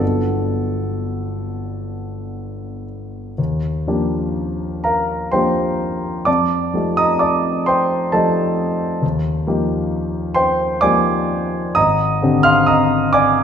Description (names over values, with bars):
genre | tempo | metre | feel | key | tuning
classical, impressionist solo piano | 35-45 BPM (dotted quarters) | 6/8 | rubato | G major, Eb major from 3.4 s | A4 = 439 Hz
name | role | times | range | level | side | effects
warm grand piano | solo | 0.0-13.4 s | G1 to F6 | -16 LUFS | equal | none
room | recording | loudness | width
moderate scoring stage reverb, RT60 1.6 s | minimal, uncompressed stereo recording | -16 LUFS | side -8 dB against mid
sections
0.0-3.4 A section; 3.4-13.4 B section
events
none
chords
0.0 Gmaj9; 3.4 Ebmaj9; 6.3 F13; 9.0 Eb69; 11.8 Abmaj7#11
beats
| 0.01 1.71 | 3.38 4.84 | 6.27 7.67 | 9.03 10.36 | 11.75 13.14